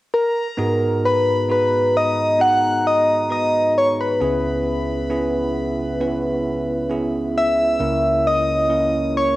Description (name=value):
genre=pop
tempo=67 BPM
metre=4/4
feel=straight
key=G# minor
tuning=A4 = 441 Hz
part: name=soft struck synth lead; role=melody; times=0.1-9.4 s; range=A#4 to F#5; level=-18 LUFS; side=left 1 dB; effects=chorus, cassette tape
part: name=bell-like tine electric piano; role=accompaniment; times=0.6-9.4 s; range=C#2 to B4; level=-23 LUFS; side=right 2 dB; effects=cassette tape
part: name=dark brass ensemble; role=sustained chords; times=0.6-9.4 s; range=C#2 to A#5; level=-29 LUFS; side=equal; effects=cassette tape
room=moderate spring reverb, RT60 2.0 s, small room ambience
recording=home recording on cassette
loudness=-17 LUFS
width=side -17 dB against mid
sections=0.6-9.4 A section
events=none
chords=0.0 N.C.; 0.6 G#m7; 4.2 C#m7; 7.8 A#dim/C#